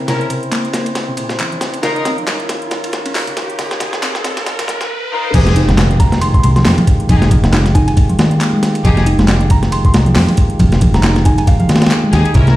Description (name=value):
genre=breakbeat, breaks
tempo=137 BPM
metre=4/4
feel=swing 57% on 16ths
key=F minor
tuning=A4 = 440 Hz
part: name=tonewheel organ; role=sustained chords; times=0.0-12.6 s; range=Db3 to C5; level=-21 LUFS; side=right 1 dB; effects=stopped rotary speaker, sidechain pumping
part: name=riser and impact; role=sound effects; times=0.7-7.1 s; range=none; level=-24 LUFS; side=equal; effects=none
part: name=picked electric bass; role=riff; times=0.1-12.6 s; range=Bb2 to Eb4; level=-18 LUFS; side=equal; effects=low-pass filter, digital delay
part: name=rich studio string section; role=stabs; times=0.1-2.0, 5.1-9.0, 12.1-12.5 s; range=Db4 to Bb4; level=-21 LUFS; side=left 2 dB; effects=digital delay
part: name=breakbeat sampler-style drum kit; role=drums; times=0.1-12.6 s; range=crash cymbal, hi-hat, kick drum, ride cymbal, snare drum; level=-15 LUFS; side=equal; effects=high-pass filter on snare, small room reverb, high-pass filter on hats, high-pass filter on cymbals, high-pass filter on kick
part: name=garage drum kit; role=drums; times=0.1-12.5 s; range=handclaps, hi-hat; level=-24 LUFS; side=equal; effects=high-pass filter on snare, small room reverb, high-pass filter on hats
part: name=fingered electric bass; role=bass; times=5.3-12.6 s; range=F1 to F2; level=-13 LUFS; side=equal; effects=none
part: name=soft synth bell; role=melody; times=6.0-11.7 s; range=F5 to C6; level=-24 LUFS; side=right 1 dB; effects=chorus, telephone sound, digital delay
room=light reverb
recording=played on a big sound system in a bare room, large studio reverb, vinyl crackle, high-pass filter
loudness=-11 LUFS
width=side -16 dB against mid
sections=0.0-5.3 A section; 5.3-12.6 B section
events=build-up 0.0-5.3; drum fill 0.0-4.9; filter sweep on picked electric bass 0.0-5.3; filter sweep on string section 0.0-5.3; filter sweep 0.0-5.3; riser 0.7-5.3; drop 5.3-12.6; impact 5.3-7.1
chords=0.0 C7b9; 1.8 Db69; 5.3 Fm9